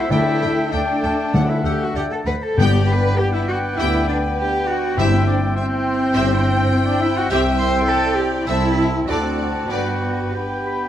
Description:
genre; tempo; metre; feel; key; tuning
quick classical-period movement for symphony orchestra; 94-104 BPM; 4/4; rubato; G major; A4 = 440 Hz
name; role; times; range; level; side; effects
clear oboe; second line; 0.0-10.9 s; C5 to C6; -29 LUFS; right 1 dB; none
mellow clarinet; second line; 0.0-10.9 s; C5 to B5; -30 LUFS; left 2 dB; none
mellow hollow silver concert flute; second line; 0.0-10.9 s; F#5 to B5; -30 LUFS; left 2 dB; none
rich chamber violin section; second line; 0.0-10.9 s; A4 to G5; -32 LUFS; left 2 dB; none
clear bassoon; accompaniment; 0.0-10.9 s; A3 to C4; -28 LUFS; right 1 dB; none
warm chamber cello section; bass; 0.0-10.9 s; C4 to C5; -23 LUFS; right 1 dB; none
rich chamber violin section; melody; 0.1-10.0 s; D5 to G5; -30 LUFS; left 3 dB; none
rich chamber viola section; accompaniment; 0.1-10.0 s; A3 to B4; -29 LUFS; left 1 dB; none
mellow French horn section; sustained chords; 0.1-10.9 s; A3 to E4; -27 LUFS; left 4 dB; none
warm trumpet; stabs; 0.1-10.9 s; F#5 to A5; -28 LUFS; equal; none
rich studio double bass section; bass; 0.1-10.2 s; G1 to D2; -23 LUFS; right 1 dB; none
timpani; percussion; 0.1-5.8 s; G2 to D3; -22 LUFS; left 2 dB; none
room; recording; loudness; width
light reverb; none; -16 LUFS; side -11 dB against mid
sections
0.0-10.9 A section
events
none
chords
0.1 Dsus4; 1.3 D; 2.6 G; 5.0 C/G; 7.3 C; 8.5 Am/C; 9.1 D7; 9.7 G

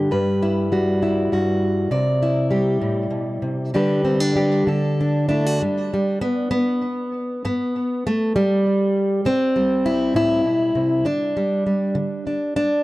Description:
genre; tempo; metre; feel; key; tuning
folk, solo fingerstyle acoustic guitar; 66 BPM (dotted quarters); 6/8; rubato; G major; A4 = 440 Hz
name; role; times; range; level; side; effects
fingerpicked plugged-in steel-string acoustic guitar; solo; 0.0-12.8 s; G2 to D5; -18 LUFS; equal; tape echo
room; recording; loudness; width
light reverb; dry, close 1970s-style studio recording; -18 LUFS; side -18 dB against mid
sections
0.0-5.6 A section; 5.6-12.8 B section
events
none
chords
0.1 Emadd9/G; 1.9 Cadd9; 3.7 G/D; 4.7 D; 5.6 N.C.; 9.3 C; 11.0 G5/D; 12.0 N.C.

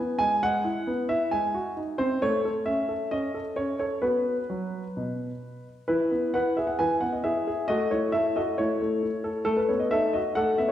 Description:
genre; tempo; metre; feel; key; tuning
classical-period piano sonatina; 134 BPM; 4/4; straight; E major; A4 = 441 Hz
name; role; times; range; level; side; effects
clear grand piano; solo; 0.0-10.7 s; B2 to G#5; -24 LUFS; equal; none
room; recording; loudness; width
wet recital hall reverb, RT60 1.6 s; recorded in a church or concert hall; -24 LUFS; side -11 dB against mid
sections
0.0-5.9 A section; 5.9-10.7 B section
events
none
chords
0.4 E/G#; 1.3 G#7; 2.2 A; 4.0 B5; 5.9 E; 7.7 A; 9.5 B7/A

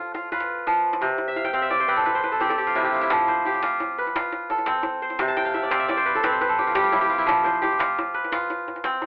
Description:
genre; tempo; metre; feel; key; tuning
west african traditional, West African string and xylophone music; 115 BPM (dotted quarters); 12/8; straight; F lydian; A4 = 440 Hz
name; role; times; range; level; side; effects
kora; arpeggios; 0.0-9.1 s; C3 to A5; -20 LUFS; equal; none
djembe; percussion; 0.1-9.1 s; none; -31 LUFS; equal; none
room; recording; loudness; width
moderate small room reverb, RT60 0.5 s; band playing live in one room, telephone sound; -20 LUFS; side -29 dB against mid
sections
0.0-3.1 A section; 3.1-9.1 B section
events
kora fill 1.3-3.1, 5.3-7.3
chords
0.0 F; 1.0 N.C.; 3.1 F; 5.2 C5; 7.3 F5

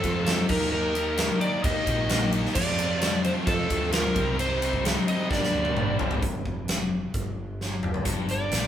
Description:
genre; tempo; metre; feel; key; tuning
classic rock; 131 BPM; 4/4; straight; unclear; A4 = 440 Hz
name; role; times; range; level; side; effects
overdriven slide guitar; melody; 0.0-8.7 s; A4 to Eb5; -28 LUFS; right 1 dB; none
warm upright piano; accompaniment; 0.0-6.1 s; D4 to Eb5; -38 LUFS; right 4 dB; none
bright tonewheel organ; sustained chords; 0.0-8.7 s; G3 to Eb5; -41 LUFS; equal; none
crunchy overdriven guitar; riff; 0.0-8.7 s; G2 to G4; -35 LUFS; right 7 dB; none
crunchy overdriven guitar; riff; 0.0-6.2 s; F2 to Eb4; -34 LUFS; equal; none
tight distorted guitar; riff; 0.0-8.7 s; G2 to G4; -34 LUFS; left 6 dB; distortion
growling fingered electric bass; bass; 0.0-8.7 s; F1 to F2; -32 LUFS; right 1 dB; overdrive
big rock drum kit; drums; 0.0-8.6 s; crash cymbal, hi-hat, kick drum, ride cymbal, snare drum, toms; -26 LUFS; left 1 dB; none
room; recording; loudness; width
moderate large studio reverb, RT60 0.9 s; band playing live in one room; -23 LUFS; side -10 dB against mid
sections
0.0-6.2 A section; 6.2-8.1 B section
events
drum fill 5.3-6.2, 7.6-8.1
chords
0.5 Eb; 2.6 F; 4.2 Cm; 5.3 Gm; 6.2 Fsus2; 8.1 Gm

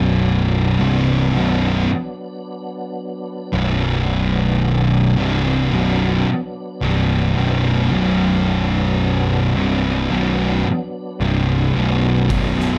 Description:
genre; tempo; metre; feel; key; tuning
stoner and doom metal; 55 BPM; 4/4; straight; B minor; A4 = 440 Hz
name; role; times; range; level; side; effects
tonewheel organ; sustained chords; 0.0-12.8 s; F#3 to D4; -31 LUFS; equal; slow rotary speaker, overdrive, chorus vibrato
thick fuzz guitar; riff; 0.0-12.8 s; B1 to C3; -22 LUFS; equal; distortion
thick fuzz guitar; riff; 0.0-12.8 s; B1 to C3; -22 LUFS; equal; distortion
fuzz picked electric bass; bass; 0.0-12.8 s; B0 to C1; -24 LUFS; equal; overdrive
oversized low-tuned drum kit; drums; 12.3-12.7 s; kick drum, ride cymbal, snare drum; -25 LUFS; equal; none
room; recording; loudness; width
light reverb; dark, warm production; -18 LUFS; mono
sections
0.0-12.8 A section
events
none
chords
0.0 Bm

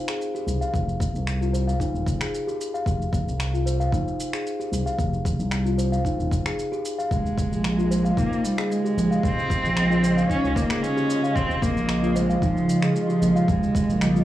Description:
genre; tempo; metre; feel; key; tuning
organic downtempo; 113 BPM; 4/4; straight; F minor; A4 = 440 Hz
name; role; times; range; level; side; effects
steel tongue drum; arpeggios; 0.1-14.2 s; Eb4 to F5; -28 LUFS; left 2 dB; analog delay
electronic finger snaps and shaker; drums; 0.1-14.2 s; none; -34 LUFS; equal; overdrive
smooth gliding synth bass; bass; 0.5-14.2 s; Eb1 to Db2; -24 LUFS; equal; sidechain pumping
electronic kick drum; drums; 0.7-13.9 s; none; -28 LUFS; equal; overdrive
warm cello; melody; 7.1-14.2 s; F3 to Db4; -23 LUFS; right 1 dB; analog delay
granular cloud pad; sustained chords; 8.4-14.2 s; Db3 to Eb5; -30 LUFS; right 1 dB; built-in reverb, sidechain pumping
room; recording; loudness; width
little or no reverb; dry, gritty hardware recording, cassette tape, small room reverb; -21 LUFS; side -13 dB against mid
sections
0.0-14.2 A section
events
none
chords
0.0 Fsus2; 7.1 Eb9sus4

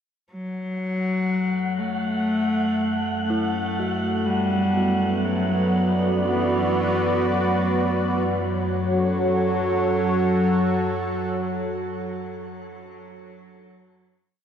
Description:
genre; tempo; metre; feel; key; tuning
dark ambient drone; 60 BPM; 4/4; straight; unclear; A4 = 440 Hz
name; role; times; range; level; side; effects
dark cello; melody; 0.3-11.9 s; E3 to A3; -25 LUFS; equal; diffuse ambient delay
analog drone; drone; 1.7-11.9 s; F#2 to A3; -28 LUFS; equal; chorus
wind-like tuned noise texture; texture; 0.8-8.3 s; F#5; -32 LUFS; left 2 dB; built-in reverb, shimmer reverb
dark detuned synth bell; arpeggios; 3.3-14.4 s; D4 to F#4; -37 LUFS; left 1 dB; none
sweeping resonant pad; sustained chords; 4.3-12.4 s; F#3 to D5; -24 LUFS; right 1 dB; chorus, shimmer reverb
room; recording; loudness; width
wet cathedral reverb, RT60 5.9 s; none; -20 LUFS; side -8 dB against mid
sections
0.3-8.3 A section; 8.3-12.2 final chord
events
fade-in on synth drone 0.3-8.3; fade-out on synth bell 0.3-8.3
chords
0.3 F#m; 4.3 Bm; 8.3 F#m

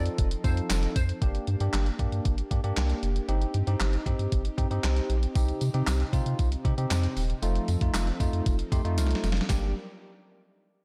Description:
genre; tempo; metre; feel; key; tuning
dance-pop; 116 BPM; 4/4; straight; G minor; A4 = 440 Hz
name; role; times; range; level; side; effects
glassy wavetable pluck; melody; 0.0-1.1 s; C5; -44 LUFS; equal; chorus, dub echo
bell-like tine electric piano; accompaniment; 0.0-9.7 s; A3 to C6; -37 LUFS; equal; none
soft supersaw; sustained chords; 0.0-9.7 s; C3 to D5; -41 LUFS; equal; sidechain pumping
warm sub bass; bass; 0.0-9.7 s; Eb1 to C3; -30 LUFS; equal; sidechain pumping
gated 80s digital drum machine; drums; 0.1-9.6 s; handclaps, hi-hat, kick drum, snare drum; -31 LUFS; equal; gated reverb, gated reverb snare
tambourine; percussion; 0.4-1.1, 5.4-9.7 s; none; -47 LUFS; equal; none
room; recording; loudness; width
digital ambience; dark, warm production; -27 LUFS; mono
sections
0.0-1.2 A section; 1.2-9.5 B section; 9.5-10.8 C section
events
drop 0.0-1.2; tine electric piano fill 8.5-9.5; drum fill 9.0-9.5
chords
0.0 F7; 1.2 Gm; 3.3 Eb6/G; 5.4 Cm; 7.4 F7; 9.5 Gm

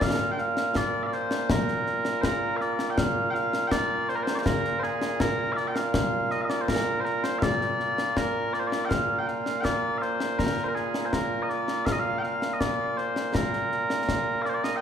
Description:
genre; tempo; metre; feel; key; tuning
scottish traditional, Scottish pipe music; 81 BPM; 2/4; straight; Bb major; A4 = 438 Hz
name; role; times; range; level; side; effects
mellow small bagpipes; melody; 0.0-14.8 s; Bb2 to G5; -26 LUFS; right 1 dB; none
concert snare drum and concert bass drum; drums; 0.0-14.8 s; none; -29 LUFS; left 2 dB; none
room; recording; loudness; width
wet recital hall reverb, RT60 1.5 s; recorded in a church or concert hall; -24 LUFS; side -8 dB against mid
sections
0.0-3.0 A section; 3.0-14.8 A section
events
none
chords
none

